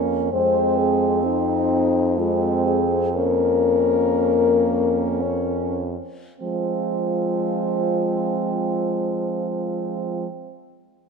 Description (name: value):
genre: classical, lyrical piece for horn quartet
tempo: 48-69 BPM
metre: 3/4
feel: rubato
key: F minor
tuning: A4 = 440 Hz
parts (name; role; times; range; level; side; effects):
- warm French horn; second line; 0.0-10.3 s; C4 to Db4; -25 LUFS; right 9 dB; none
- mellow French horn; accompaniment; 0.0-10.3 s; Ab3 to Db4; -26 LUFS; left 3 dB; none
- mellow French horn; bass; 0.0-10.3 s; F2 to F3; -26 LUFS; right 3 dB; none
- mellow French horn; melody; 0.3-10.3 s; Eb4 to C5; -23 LUFS; left 10 dB; none
room: moderate concert hall reverb, RT60 1.7 s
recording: none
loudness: -19 LUFS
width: side -5 dB against mid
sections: 0.0-6.4 A section; 6.4-9.9 B section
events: slowing down 0.0-6.4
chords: 0.3 Fm; 3.1 Bbm/F; 6.4 Fm